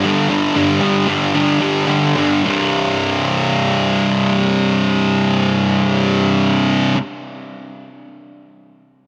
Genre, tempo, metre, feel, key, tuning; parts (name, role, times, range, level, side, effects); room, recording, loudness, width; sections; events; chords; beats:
rock; 105-119 BPM; 4/4; straight; A4 = 440 Hz
fuzz guitar; solo; 0.0-7.0 s; C2 to G3; -16 LUFS; equal; distortion
light reverb, digital ambience; dense, heavily limited modern master; -16 LUFS; mono
0.0-2.4 A section; 2.4-7.0 B section
slowing down 0.0-2.4
0.0 G5; 2.4 C5
| 0.29 0.80 1.33 1.87 | 2.43 3.00 3.57 4.14 | 4.71 5.28 5.85 6.42